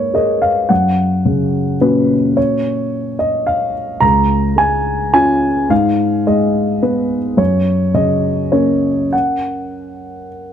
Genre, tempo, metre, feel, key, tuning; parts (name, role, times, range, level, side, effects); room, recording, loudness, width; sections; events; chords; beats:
classical, contemporary piece for solo grand piano; 107 BPM; 3/4; rubato; F# major; A4 = 440 Hz
dark concert grand piano; solo; 0.0-10.5 s; C#2 to A#5; -13 LUFS; equal
light reverb; close, detailed microphones; -13 LUFS; side -9 dB against mid
0.0-10.5 A section
0.0 G#madd9; 0.7 F#; 4.0 C#6; 5.7 G#m; 7.4 F#
0.15 | 0.70 1.26 1.81 | 2.36 2.91 3.47 | 4.02 4.58 5.15 | 5.71 6.27 6.83 | 7.39 7.95 8.53 | 9.12 9.71 10.30